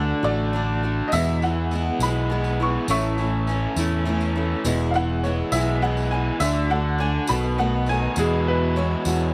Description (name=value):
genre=folk rock and heartland rock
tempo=68 BPM (dotted quarters)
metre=6/8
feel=straight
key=E mixolydian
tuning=A4 = 440 Hz
part: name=clear upright piano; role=second line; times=0.0-9.3 s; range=G#4 to C#6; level=-29 LUFS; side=equal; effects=none
part: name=picked steel-string acoustic guitar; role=accompaniment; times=0.0-9.3 s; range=E2 to F#4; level=-30 LUFS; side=equal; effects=none
part: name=raw garage guitar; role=riff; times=0.0-9.3 s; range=E2 to E4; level=-30 LUFS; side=equal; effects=overdrive
part: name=fingered electric bass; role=bass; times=0.0-9.3 s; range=E1 to E2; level=-27 LUFS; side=equal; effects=none
part: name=tonewheel organ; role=sustained chords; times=1.1-9.3 s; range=A3 to G#5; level=-37 LUFS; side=equal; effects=none
part: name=tambourine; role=percussion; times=1.1-9.3 s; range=none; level=-39 LUFS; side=equal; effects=none
room=light reverb, small room reverb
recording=none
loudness=-23 LUFS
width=mono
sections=0.0-8.2 A section; 8.2-9.3 B section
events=upright piano solo 0.0-8.2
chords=0.0 D; 1.1 E; 2.9 A; 4.7 E; 6.4 D; 7.3 B7; 8.2 Eadd9